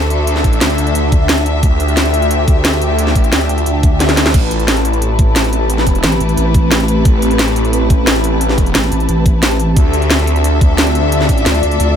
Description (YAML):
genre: dark technical drum and bass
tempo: 177 BPM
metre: 4/4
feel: straight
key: unclear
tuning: A4 = 440 Hz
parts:
  - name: rich studio string section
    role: sustained chords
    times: 0.0-12.0 s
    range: A3 to E5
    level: -20 LUFS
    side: left 2 dB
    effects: sidechain pumping
  - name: phased detuned saw bass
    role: bass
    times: 0.0-11.4 s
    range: E1 to D2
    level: -15 LUFS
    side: equal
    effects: phaser, overdrive
  - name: drum and bass drum kit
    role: drums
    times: 0.0-11.9 s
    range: crash cymbal, hi-hat, snare drum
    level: -16 LUFS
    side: equal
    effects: none
  - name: ethereal airy pad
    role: texture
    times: 0.1-12.0 s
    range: C4 to A5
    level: -21 LUFS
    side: equal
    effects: ensemble chorus, built-in reverb, tremolo, sidechain pumping
  - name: electronic kick drum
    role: drums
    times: 0.4-11.4 s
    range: none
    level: -12 LUFS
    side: equal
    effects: none
  - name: pulsing pluck wobble bass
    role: bass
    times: 6.0-12.0 s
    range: A1 to D2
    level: -14 LUFS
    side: equal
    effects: chorus
room: light reverb, digital ambience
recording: none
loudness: -10 LUFS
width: side -8 dB against mid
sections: 0.0-12.0 A section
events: fade-in on ambient pad 0.0-12.0; drum fill 4.0-4.3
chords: 0.0 Dm; 4.3 Am7; 9.8 Dm